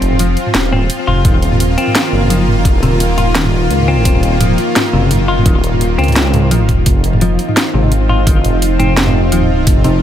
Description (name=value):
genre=half-time drum and bass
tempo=171 BPM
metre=4/4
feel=swing 55% on 16ths, half-time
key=unclear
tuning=A4 = 444 Hz
part: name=bowed-like drone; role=sustained chords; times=0.0-10.0 s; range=Eb3 to F4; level=-17 LUFS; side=equal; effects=built-in reverb, sidechain pumping
part: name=clean electric guitar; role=arpeggios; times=0.0-10.0 s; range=C3 to F4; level=-19 LUFS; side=left 3 dB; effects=tremolo, ping-pong delay
part: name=dark detuned saw bass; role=bass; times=0.0-10.0 s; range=Eb1 to Db2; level=-14 LUFS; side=equal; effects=none
part: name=drum and bass drum kit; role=drums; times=0.0-9.9 s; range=hi-hat, snare drum, toms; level=-17 LUFS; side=right 1 dB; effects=overdrive
part: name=electronic kick drum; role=drums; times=1.2-9.7 s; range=none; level=-13 LUFS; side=equal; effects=none
part: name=pulsing gated texture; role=texture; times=7.1-10.0 s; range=Eb4 to Eb5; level=-21 LUFS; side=right 6 dB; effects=chorus, built-in reverb
room=light reverb, digital ambience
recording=none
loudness=-10 LUFS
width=side -10 dB against mid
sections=0.0-10.0 A section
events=none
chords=0.0 F7(no3); 1.2 Ebmadd9; 6.9 Fm7